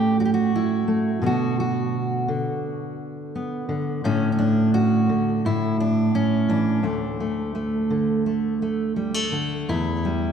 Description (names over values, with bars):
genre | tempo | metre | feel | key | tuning
folk, solo fingerstyle acoustic guitar | 86 BPM | 4/4 | straight | D major | A4 = 440 Hz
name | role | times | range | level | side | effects
fingerpicked steel-string acoustic guitar | solo | 0.0-10.3 s | D2 to G4 | -20 LUFS | right 1 dB | none
room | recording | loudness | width
wet church reverb, RT60 2.6 s | recorded in a church or concert hall | -20 LUFS | side -7 dB against mid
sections
0.0-9.7 A section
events
none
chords
0.0 A; 1.2 Bm; 4.0 Asus4; 5.4 A; 6.8 D5; 9.7 Em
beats
0.54 | 1.24 1.94 2.64 3.34 | 4.03 4.73 5.43 6.14 | 6.84 7.55 8.26 8.97 | 9.68